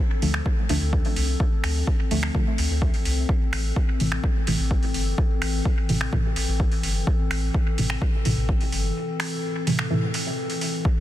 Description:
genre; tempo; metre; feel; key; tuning
dub techno; 127 BPM; 4/4; straight; unclear; A4 = 440 Hz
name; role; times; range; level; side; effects
warbly tape-like pad; sustained chords; 0.0-11.0 s; E3 to A4; -31 LUFS; left 4 dB; chorus, built-in reverb, sidechain pumping
deep mellow chord stab; stabs; 0.2-10.1 s; A2 to A3; -28 LUFS; right 1 dB; chorus, phaser, sidechain pumping, dub echo
soft dub sub bass; bass; 0.2-8.9 s; G1 to D2; -26 LUFS; equal; sidechain pumping
soft vintage rhythm box; drums; 0.2-10.7 s; finger snaps, hi-hat; -30 LUFS; right 1 dB; overdrive, soft clipping on snare, dub echo
electronic kick drum; drums; 0.5-10.9 s; none; -23 LUFS; equal; none
room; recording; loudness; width
light reverb, digital ambience; dense, heavily limited modern master, vinyl crackle, faint mains hum; -21 LUFS; side -13 dB against mid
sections
0.0-11.0 A section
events
filter sweep on synth stab 0.0-11.0; break 9.0-10.9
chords
0.0 Dm; 3.3 Am

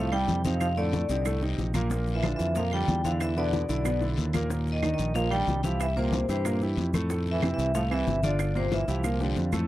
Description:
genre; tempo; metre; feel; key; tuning
Afro-Cuban jazz; 185 BPM; 4/4; straight; F major; A4 = 440 Hz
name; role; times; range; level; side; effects
vibraphone with medium hard mallets; melody; 0.0-9.5 s; C5 to G5; -31 LUFS; left 2 dB; none
clear trombone; second line; 0.0-9.5 s; C3 to G3; -35 LUFS; right 5 dB; none
clear concert grand piano; accompaniment; 0.0-9.7 s; A2 to B4; -31 LUFS; right 2 dB; none
modern bright fingered electric bass; bass; 0.0-9.7 s; G1 to G2; -28 LUFS; equal; none
bongos; percussion; 0.1-9.6 s; none; -39 LUFS; left 5 dB; none
claves; percussion; 0.1-9.7 s; none; -38 LUFS; right 10 dB; none
congas; percussion; 0.1-9.7 s; none; -33 LUFS; left 2 dB; none
maracas; percussion; 0.1-9.7 s; none; -47 LUFS; right 8 dB; none
guiro; percussion; 0.3-9.7 s; none; -43 LUFS; left 8 dB; none
room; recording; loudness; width
little or no reverb; dry, close 1970s-style studio recording; -25 LUFS; side -15 dB against mid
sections
0.0-9.7 A section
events
drum fill 4.0-4.5, 9.0-9.7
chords
0.0 Fmaj7; 0.6 F6; 1.9 Bb; 3.2 E5; 4.5 Ebmaj7; 5.8 C7; 7.1 Fmaj7; 8.4 Gm7; 9.0 Csus2

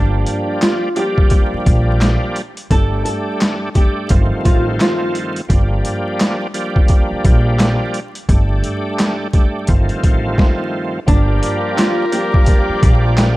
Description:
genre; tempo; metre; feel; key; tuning
hip hop, boom-bap hip-hop; 86 BPM; 4/4; swing 61% on 16ths; G minor; A4 = 440 Hz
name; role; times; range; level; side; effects
flamenco guitar; melody; 0.0-5.1, 11.1-13.3 s; D4 to A4; -21 LUFS; equal; high-pass filter, low-pass filter, slapback echo
bright tonewheel organ; accompaniment; 0.0-13.4 s; G2 to G4; -21 LUFS; right 1 dB; overdrive, chorus vibrato, slow rotary speaker, high-pass filter, low-pass filter
upright bass; bass; 0.0-13.3 s; G1 to Bb1; -17 LUFS; equal; none
boom bap sampler-style drum kit; drums; 0.3-13.4 s; handclaps, hi-hat, kick drum, snare drum; -14 LUFS; equal; overdrive
warm studio string section; sustained chords; 11.1-13.4 s; Bb4 to D6; -30 LUFS; right 3 dB; high-pass filter, low-pass filter
warm horn section; stabs; 11.1-13.4 s; F4 to Bb4; -24 LUFS; left 3 dB; high-pass filter, low-pass filter, slapback echo
room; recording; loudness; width
small room ambience; dark, warm production, vinyl crackle; -13 LUFS; side -18 dB against mid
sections
0.0-11.1 A section; 11.1-13.4 B section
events
none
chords
0.0 Gm7; 2.7 Dsus4/G; 4.1 F7/G; 5.5 Gm7; 8.3 Dsus4/G; 9.7 F7/G; 11.1 Gm7

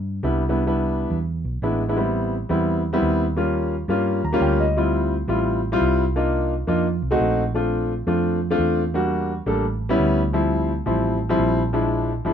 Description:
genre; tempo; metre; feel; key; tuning
Afro-Cuban jazz; 172 BPM; 4/4; straight; A minor; A4 = 437 Hz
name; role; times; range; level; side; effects
hollow-body short-scale fingered electric bass; bass; 0.0-12.3 s; G1 to G2; -24 LUFS; right 2 dB; none
warm concert grand piano; accompaniment; 0.2-12.3 s; F3 to A#5; -21 LUFS; left 1 dB; none
room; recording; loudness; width
moderate club reverb, RT60 0.8 s; minimal, uncompressed stereo recording; -19 LUFS; side -8 dB against mid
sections
0.0-2.0 A section; 2.0-12.3 B section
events
grand piano fill 4.1-4.8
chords
0.0 Cmaj9; 1.3 E7; 2.0 Am7; 3.4 D#9; 4.8 Dm11; 6.2 Cm11; 6.9 F7b9; 7.6 Bbmaj9; 8.9 Em7b5; 9.6 A7; 10.3 Dm11; 11.7 Bb7#11

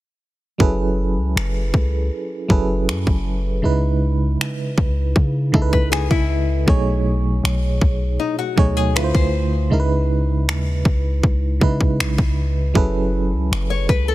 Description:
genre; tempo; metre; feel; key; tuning
contemporary R&B; 79 BPM; 4/4; straight; unclear; A4 = 439 Hz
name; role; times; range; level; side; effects
FM electric piano with tremolo; accompaniment; 0.6-14.1 s; B2 to C#5; -22 LUFS; right 2 dB; none
warm 808-style bass; bass; 0.6-14.1 s; F#1 to C#3; -20 LUFS; equal; none
trap drum kit; drums; 0.6-14.1 s; finger snaps, kick drum; -19 LUFS; equal; overdrive, soft clipping on snare
nylon-string guitar; arpeggios; 5.7-14.1 s; D#4 to C#5; -25 LUFS; left 8 dB; tape echo
room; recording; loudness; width
little or no reverb; dense, heavily limited modern master; -17 LUFS; side -16 dB against mid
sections
0.6-14.1 A section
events
none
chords
0.6 F#m11; 3.6 C#m9; 6.7 B13; 9.0 Dm9; 9.7 C#m9; 12.8 F#m11

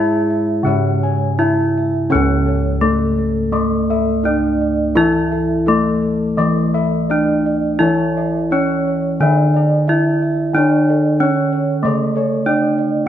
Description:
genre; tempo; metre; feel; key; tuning
gamelan; 79-99 BPM; 4/4; straight; C# pelog; A4 = 442 Hz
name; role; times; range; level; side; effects
gamelan-type bronze metallophone; melody; 0.0-13.1 s; A3 to E4; -18 LUFS; equal; none
gamelan-type bronze metallophone; accompaniment; 0.0-13.1 s; C#3 to A3; -20 LUFS; right 1 dB; none
gamelan-type bossed gongs; arpeggios; 0.0-12.8 s; A4 to G#5; -24 LUFS; left 4 dB; none
gamelan-type bronze metallophone; arpeggios; 0.0-13.1 s; A4 to E5; -25 LUFS; right 5 dB; none
gamelan-type bossed gongs; bass; 0.0-13.1 s; C#2 to G#4; -22 LUFS; left 1 dB; none
room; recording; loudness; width
moderate recital hall reverb, RT60 1.5 s; none; -14 LUFS; side -10 dB against mid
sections
0.0-2.1 A section; 2.1-13.1 B section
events
none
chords
none

